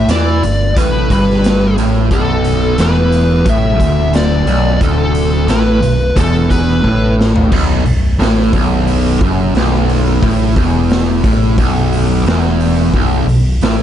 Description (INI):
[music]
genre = stoner and doom metal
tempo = 89 BPM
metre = 4/4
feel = straight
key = B minor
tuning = A4 = 441 Hz
[part]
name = fuzz lead guitar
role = melody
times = 0.0-7.1 s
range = A4 to E5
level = -18 LUFS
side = left 2 dB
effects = wah, distortion, slapback echo
[part]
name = fuzz guitar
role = riff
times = 0.0-13.8 s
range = B1 to E3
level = -14 LUFS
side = right 1 dB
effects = distortion
[part]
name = overdriven fingered electric bass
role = bass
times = 0.0-13.8 s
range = B0 to E2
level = -16 LUFS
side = equal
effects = tube saturation
[part]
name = raw garage drum kit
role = drums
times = 0.1-13.8 s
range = crash cymbal, hi-hat, kick drum, snare drum, toms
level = -17 LUFS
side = equal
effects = none
[sound]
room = studio ambience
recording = dark, warm production, nothing above 10.4 kHz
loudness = -10 LUFS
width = side -10 dB against mid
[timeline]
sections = 0.0-7.5 A section; 7.5-13.8 B section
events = drum fill 6.8-7.5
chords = 0.0 G5; 2.1 Bm; 7.5 N.C.